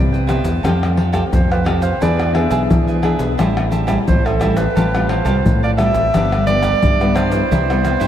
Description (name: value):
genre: samba and choro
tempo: 87 BPM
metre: 4/4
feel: straight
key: unclear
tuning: A4 = 444 Hz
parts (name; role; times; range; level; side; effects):
- clear clarinet; melody; 0.0-8.1 s; A4 to E5; -21 LUFS; right 2 dB; ping-pong delay
- nylon-string guitar; accompaniment; 0.0-8.1 s; G2 to G#4; -21 LUFS; left 2 dB; none
- fingered electric bass; bass; 0.0-8.1 s; G1 to E3; -19 LUFS; equal; none
- cavaquinho; accompaniment; 0.1-8.1 s; D4 to A5; -25 LUFS; right 4 dB; none
- egg shaker, pandeiro, tamborim and surdo; percussion; 0.1-8.1 s; none; -19 LUFS; left 1 dB; none
room: moderate cathedral reverb, RT60 5.3 s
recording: dreamy mix soaked in reverb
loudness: -13 LUFS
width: side -10 dB against mid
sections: 0.0-8.1 A section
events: none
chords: 0.0 Cmaj7; 0.6 Fadd9; 2.0 E7; 3.4 Am7; 4.8 Fadd9/A; 6.1 G; 7.5 Cmaj7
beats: 0.64 1.33 | 2.02 2.70 3.39 4.08 | 4.77 5.45 6.14 6.83 | 7.52